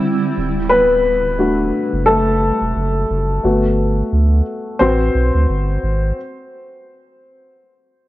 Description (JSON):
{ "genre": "hip hop", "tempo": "88 BPM", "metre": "4/4", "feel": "swing 57% on 16ths", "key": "A dorian", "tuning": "A4 = 440 Hz", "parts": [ { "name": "dark upright piano", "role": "accompaniment", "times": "0.0-6.2 s", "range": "A3 to C5", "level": "-16 LUFS", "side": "left 1 dB", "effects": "cassette tape, low-pass filter" }, { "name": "granular cloud pad", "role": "sustained chords", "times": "0.0-0.7 s", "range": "D3 to E4", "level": "-22 LUFS", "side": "right 2 dB", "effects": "built-in reverb, low-pass filter" }, { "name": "warm sub bass", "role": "bass", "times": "0.4-6.1 s", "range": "D1 to D2", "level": "-18 LUFS", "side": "equal", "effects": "none" } ], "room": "light reverb, small room reverb", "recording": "cassette tape", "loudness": "-14 LUFS", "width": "side -15 dB against mid", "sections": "0.0-6.2 A section", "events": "upright piano solo 0.0-6.2", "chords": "0.4 Bm7/D; 3.4 Gmaj7; 4.8 Am69" }